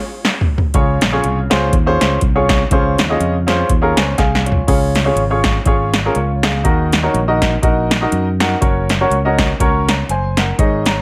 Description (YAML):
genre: uptempo gospel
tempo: 122 BPM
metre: 4/4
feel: swing 56% on 8ths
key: Db major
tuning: A4 = 440 Hz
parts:
  - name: electro analog drum machine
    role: drums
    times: 0.2-11.0 s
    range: crash cymbal, hi-hat, kick drum, snare drum, toms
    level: -19 LUFS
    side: equal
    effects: none
  - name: clear grand piano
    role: accompaniment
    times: 0.7-11.0 s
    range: Ab2 to Bb5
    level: -19 LUFS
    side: equal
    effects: none
  - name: fingered electric bass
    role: bass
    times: 0.7-11.0 s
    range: Gb1 to Gb2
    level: -21 LUFS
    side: equal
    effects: none
room: light reverb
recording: none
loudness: -15 LUFS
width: mono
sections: 0.7-4.7 A section; 4.7-11.0 B section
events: drum fill 0.0-0.7, 4.2-4.7; band accent 0.0-0.7; grand piano fill 3.7-4.7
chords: 0.0 Db; 6.6 Ebm; 8.6 Gb